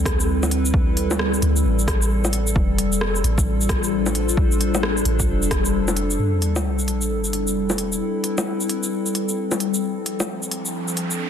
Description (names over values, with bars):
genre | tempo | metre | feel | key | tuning
future garage | 132 BPM | 4/4 | swing 62% on 16ths | A minor | A4 = 439 Hz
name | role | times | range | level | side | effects
warbly tape-like pad | sustained chords | 0.0-11.3 s | F3 to C5 | -23 LUFS | left 1 dB | chorus, built-in reverb, phaser, sidechain pumping
soft 808-style bass | bass | 0.0-6.2 s | F1 to D2 | -23 LUFS | equal | sidechain pumping
electronic kick drum | drums | 0.1-5.6 s | none | -21 LUFS | equal | overdrive
organic electronic drum kit | drums | 0.1-11.2 s | bongos, hi-hat, rim click, shaker | -25 LUFS | left 1 dB | overdrive
sub drop and riser | sound effects | 6.2-11.3 s | none | -25 LUFS | equal | none
room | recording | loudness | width
little or no reverb | dense, heavily limited modern master | -19 LUFS | side -8 dB against mid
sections
0.0-6.2 A section; 6.2-11.3 B section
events
kick drops out 5.7-6.2; impact 6.2-8.0; riser 10.4-11.3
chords
0.0 Am9; 2.6 F69; 6.2 Am9; 9.8 Dm7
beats
0.29 | 0.74 1.20 1.65 2.10 | 2.56 3.01 3.47 3.92 | 4.38 4.83 5.29 5.74 | 6.20 6.65 7.10 7.56 | 8.01 8.47 8.92 9.38 | 9.83 10.29 10.74 11.20